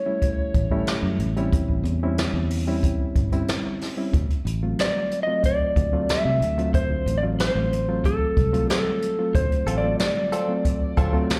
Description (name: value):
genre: straight-eighth soul blues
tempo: 92 BPM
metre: 4/4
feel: straight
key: unclear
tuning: A4 = 440 Hz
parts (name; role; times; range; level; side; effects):
- electric slide guitar; melody; 0.0-11.4 s; A4 to E5; -28 LUFS; equal; slapback echo
- reed electric piano; accompaniment; 0.0-11.4 s; F#3 to E#4; -30 LUFS; equal; spring reverb, slapback echo
- jazz brush drum kit; drums; 0.2-11.4 s; hi-hat, kick drum, snare drum; -26 LUFS; equal; none
- fingered electric bass; bass; 0.5-11.3 s; G1 to C3; -28 LUFS; equal; none
- direct-recorded clean electric guitar; stabs; 9.7-11.2 s; F#3 to A4; -33 LUFS; equal; spring reverb, slapback echo
room: small room ambience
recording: live gig heard through the venue's PA, club reverb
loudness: -23 LUFS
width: mono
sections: 0.0-11.4 A section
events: none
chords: 0.0 A7#9; 4.1 D7#9